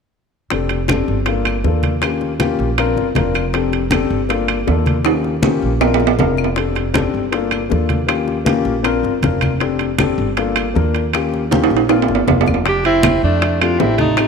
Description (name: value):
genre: Afro-Cuban jazz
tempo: 158 BPM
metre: 4/4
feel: straight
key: F major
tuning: A4 = 440 Hz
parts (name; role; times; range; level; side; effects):
- dark baby grand piano; accompaniment; 0.5-14.3 s; A3 to Bb4; -19 LUFS; left 7 dB; none
- upright bass; bass; 0.5-14.3 s; F1 to F2; -21 LUFS; right 2 dB; none
- bongos; percussion; 0.5-14.3 s; none; -26 LUFS; left 9 dB; none
- congas; percussion; 0.5-14.3 s; none; -22 LUFS; equal; none
- timbales; percussion; 0.5-14.3 s; none; -21 LUFS; right 13 dB; none
- claves; percussion; 0.9-14.3 s; none; -30 LUFS; left 10 dB; none
- clear alto saxophone; melody; 12.7-14.3 s; D4 to G4; -16 LUFS; right 4 dB; none
- bright tenor saxophone; second line; 12.7-14.3 s; A3 to D4; -21 LUFS; left 9 dB; none
room: moderate plate reverb, RT60 2.6 s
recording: 1960s-style stereo with parts hard left and right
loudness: -14 LUFS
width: side -5 dB against mid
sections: 0.5-12.7 A section; 12.7-14.3 B section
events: drum fill 5.1-6.6, 11.5-12.7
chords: 0.5 F6; 1.3 Gm7; 2.0 Eb7; 2.8 Bbadd9; 3.5 F6; 4.3 Gm7; 5.1 Eb7; 5.8 Bbadd9; 6.6 F6; 7.3 Gm7; 8.1 Eb7; 8.9 Bbadd9; 9.6 F6; 10.4 Gm7; 11.1 Eb7; 11.9 Bbadd9; 12.7 F69